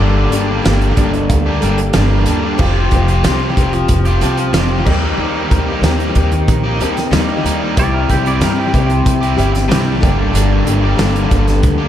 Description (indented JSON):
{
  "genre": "folk rock and heartland rock",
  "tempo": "93 BPM",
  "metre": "4/4",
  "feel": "straight",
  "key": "G minor",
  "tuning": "A4 = 440 Hz",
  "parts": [
    { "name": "pedal steel guitar", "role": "second line", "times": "0.0-0.3, 7.8-10.6 s", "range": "G4 to D5", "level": "-24 LUFS", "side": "right 4 dB", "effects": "none" },
    { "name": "dark upright piano", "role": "accompaniment", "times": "0.0-11.1 s", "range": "G4 to Bb5", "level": "-28 LUFS", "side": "right 6 dB", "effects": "analog delay" },
    { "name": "picked steel-string acoustic guitar", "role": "accompaniment", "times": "0.0-11.9 s", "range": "G2 to Bb4", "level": "-21 LUFS", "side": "left 7 dB", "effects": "analog delay" },
    { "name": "tonewheel organ", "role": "sustained chords", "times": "0.0-11.9 s", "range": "Bb3 to A4", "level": "-27 LUFS", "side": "right 2 dB", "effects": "none" },
    { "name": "raw garage guitar", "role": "riff", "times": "0.0-11.9 s", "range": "G2 to G4", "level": "-18 LUFS", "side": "equal", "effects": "overdrive, analog delay" },
    { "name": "upright bass", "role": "bass", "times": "0.0-11.9 s", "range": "F1 to G2", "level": "-16 LUFS", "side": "equal", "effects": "none" },
    { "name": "loose indie drum kit", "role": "drums", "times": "0.3-11.8 s", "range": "crash cymbal, hi-hat, kick drum, snare drum", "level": "-17 LUFS", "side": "equal", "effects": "analog delay" }
  ],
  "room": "studio reverb",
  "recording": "echo-heavy mix",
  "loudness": "-12 LUFS",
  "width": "side -11 dB against mid",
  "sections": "0.0-11.9 A section",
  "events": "upright piano fill 0.7-2.6, 6.5-7.8",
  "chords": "0.0 Gmadd9; 2.6 Fsus2; 4.9 Eb6; 7.8 C; 10.0 Gmadd9",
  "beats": "| 0.00 0.65 1.30 1.95 | 2.60 3.25 3.90 4.54 | 5.19 5.84 6.48 7.13 | 7.77 8.42 9.06 9.71 | 10.35 10.99 11.63"
}